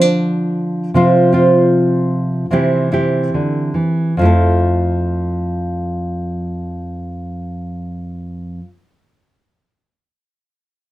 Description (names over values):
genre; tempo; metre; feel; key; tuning
folk; 69-82 BPM; 4/4; straight; F major; A4 = 440 Hz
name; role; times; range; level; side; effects
nylon-string guitar; accompaniment; 0.0-8.7 s; F2 to A4; -14 LUFS; equal; none
room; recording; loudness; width
little or no reverb; close, detailed microphones; -13 LUFS; side -15 dB against mid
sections
0.0-4.2 A section; 4.2-7.6 B section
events
slowing down 0.0-4.2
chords
0.0 Dm; 0.9 Csus4; 2.5 C; 4.2 Fmaj7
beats
0.20 | 0.94 1.71 2.50 3.31 | 4.16 5.03 5.89 6.76